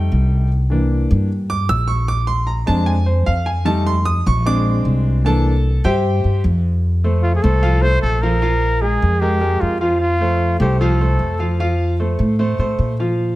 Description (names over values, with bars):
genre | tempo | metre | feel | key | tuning
Afro-Cuban jazz | 151 BPM | 4/4 | straight | unclear | A4 = 436 Hz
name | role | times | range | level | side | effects
clear baby grand piano | accompaniment | 0.0-13.3 s | E3 to E6 | -20 LUFS | equal | none
upright bass | bass | 0.0-13.4 s | Bb1 to Bb2 | -17 LUFS | equal | none
mellow trumpet | melody | 7.2-11.6 s | F4 to C5 | -20 LUFS | equal | none
room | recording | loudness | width
moderate large studio reverb, RT60 1.4 s | none | -15 LUFS | side -17 dB against mid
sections
0.0-6.8 A section; 6.8-13.4 B section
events
grand piano solo 0.0-6.8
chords
0.0 F7 (rootless); 0.5 C7; 2.1 Bb7; 3.7 F7; 4.5 Bb7; 5.2 C7; 6.8 F; 8.4 Bb5; 10.0 F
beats
0.12 | 0.51 0.91 1.30 1.70 | 2.09 2.48 2.88 3.27 | 3.67 4.07 4.46 4.86 | 5.25 5.65 6.04 6.44 | 6.83 7.23 7.63 8.02 | 8.42 8.82 9.21 9.61 | 10.01 10.41 10.80 11.20 | 11.60 12.00 12.39 12.79 | 13.19